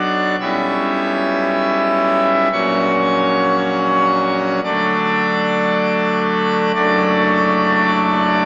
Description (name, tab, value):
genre	classical, chorale-style piece for pipe organ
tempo	57 BPM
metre	4/4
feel	rubato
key	D major from 4.6 s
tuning	A4 = 444 Hz
part	pipe organ, full organ	solo	0.0-8.5 s	F#1 to E5	-13 LUFS	equal	none
room	wet church reverb, RT60 2.7 s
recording	small speaker sound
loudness	-13 LUFS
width	side -39 dB against mid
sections	0.0-8.5 A section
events	none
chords	0.4 C#m7b5/B; 2.5 F#/A#; 4.6 D; 6.8 D/F#